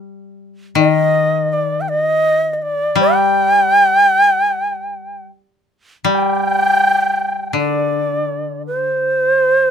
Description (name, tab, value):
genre	japanese traditional, Japanese chamber music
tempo	75-86 BPM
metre	4/4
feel	rubato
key	unclear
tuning	A4 = 440 Hz
part	koto	accompaniment	0.0-9.7 s	D3 to G3	-20 LUFS	left 4 dB	none
part	long shakuhachi	melody	0.8-9.7 s	C5 to G5	-14 LUFS	equal	none
room	light reverb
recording	close, detailed microphones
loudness	-13 LUFS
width	side -7 dB against mid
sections	0.0-6.1 A section; 6.1-9.7 B section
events	none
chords	none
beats	| 0.08 0.78 1.50 2.23 | 2.98 3.73 4.49 5.29 | 6.07 6.83 7.57 8.30 | 9.03